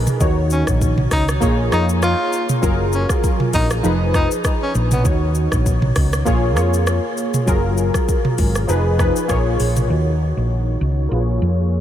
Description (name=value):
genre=afrobeats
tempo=99 BPM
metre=4/4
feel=swing 55% on 16ths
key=Eb minor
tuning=A4 = 440 Hz
part: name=warm analog keys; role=accompaniment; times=0.0-11.8 s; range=Eb3 to Db5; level=-21 LUFS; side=left 1 dB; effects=chorus, low-pass filter
part: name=hollow-body short-scale fingered electric bass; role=bass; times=0.0-11.8 s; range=F1 to F2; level=-18 LUFS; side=equal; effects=none
part: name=afro-pop drum kit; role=drums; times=0.1-9.9 s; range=hi-hat, kick drum, rim click, shaker, toms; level=-20 LUFS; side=equal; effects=none
part: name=warm tenor saxophone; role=melody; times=0.5-5.0 s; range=Cb4 to F4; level=-23 LUFS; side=left 1 dB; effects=ping-pong delay
room=light reverb, digital ambience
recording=none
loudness=-15 LUFS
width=side -11 dB against mid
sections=0.0-9.9 A section; 9.9-11.8 B section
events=filter sweep on synth keys 9.9-11.8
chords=0.2 Ebm7; 1.4 Bbm7; 2.6 Gbmaj9; 3.8 Fm7b5; 5.1 Ebm7; 6.3 Bbm7; 7.5 Gbmaj9; 8.7 Fm7b5; 9.3 Bbm7; 9.9 Ebm7; 11.1 Bbm7